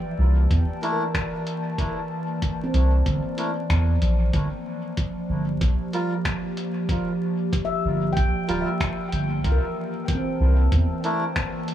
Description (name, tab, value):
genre	ambient dub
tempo	94 BPM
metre	4/4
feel	straight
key	unclear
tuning	A4 = 440 Hz
part	warbly tape-like pad	sustained chords	0.0-11.7 s	E3 to A5	-28 LUFS	equal	chorus, built-in reverb
part	soft dub sub bass	bass	0.2-10.9 s	D1 to E2	-20 LUFS	equal	none
part	electronic kick drum	drums	0.5-11.5 s	none	-27 LUFS	equal	none
part	lo-fi sampler-style drum kit	drums	0.5-11.7 s	finger snaps, hi-hat	-32 LUFS	left 1 dB	none
part	melodica	stabs	0.8-11.2 s	G3 to Bb4	-32 LUFS	equal	dub echo
part	handpan	arpeggios	0.9-11.7 s	C4 to G5	-32 LUFS	left 1 dB	dub echo
room	digital ambience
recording	vinyl crackle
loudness	-21 LUFS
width	side -11 dB against mid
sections	0.0-11.7 A section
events	none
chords	0.0 C13; 4.3 Gm7; 9.4 C13